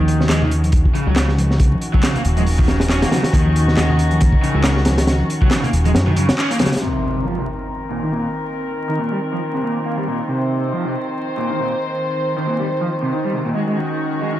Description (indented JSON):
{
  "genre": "breakbeat, breaks",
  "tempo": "138 BPM",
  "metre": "4/4",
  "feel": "swing 56% on 16ths",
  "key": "unclear",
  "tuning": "A4 = 441 Hz",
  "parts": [
    { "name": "dark chamber string section", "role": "sustained chords", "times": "0.0-14.4 s", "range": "Eb3 to C5", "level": "-23 LUFS", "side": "equal", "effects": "sidechain pumping, low-pass filter" },
    { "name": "crunchy overdriven guitar", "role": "riff", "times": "0.0-14.4 s", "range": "Bb2 to Db4", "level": "-22 LUFS", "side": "equal", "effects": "spring reverb, low-pass filter, ping-pong delay" },
    { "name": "fat analog bass", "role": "bass", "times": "0.0-6.3 s", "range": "Eb1 to Gb2", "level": "-17 LUFS", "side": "equal", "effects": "tube saturation" },
    { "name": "crunchy breakbeat drum kit", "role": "drums", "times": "0.1-6.8 s", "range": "hi-hat, kick drum, snare drum", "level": "-18 LUFS", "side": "equal", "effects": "none" },
    { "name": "congas", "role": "percussion", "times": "0.2-6.7 s", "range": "none", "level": "-26 LUFS", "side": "left 1 dB", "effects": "none" },
    { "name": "electronic handclaps", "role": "drums", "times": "0.3-6.5 s", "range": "none", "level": "-28 LUFS", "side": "equal", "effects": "overdrive, low-pass filter on snare" },
    { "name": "impact", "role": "sound effects", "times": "6.8-8.6 s", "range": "none", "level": "-28 LUFS", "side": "equal", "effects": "none" }
  ],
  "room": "light reverb",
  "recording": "dark, warm production, vinyl crackle",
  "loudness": "-16 LUFS",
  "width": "side -13 dB against mid",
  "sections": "0.0-6.8 A section; 6.8-14.4 B section",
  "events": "band accent 6.4; impact 6.8-8.6; filter sweep on string section 6.8-14.4",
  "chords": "0.0 Ebm7; 6.8 Cm7; 13.6 Ebm7",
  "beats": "0.29 0.73 1.17 | 1.60 2.04 2.47 2.90 | 3.34 3.77 4.21 4.64 | 5.08 5.51 5.95 6.38 | 6.82 7.25 7.69 8.12 | 8.56 8.99 9.43 9.86 | 10.29 10.73 11.16 11.60 | 12.04 12.47 12.90 13.34 | 13.77 14.21"
}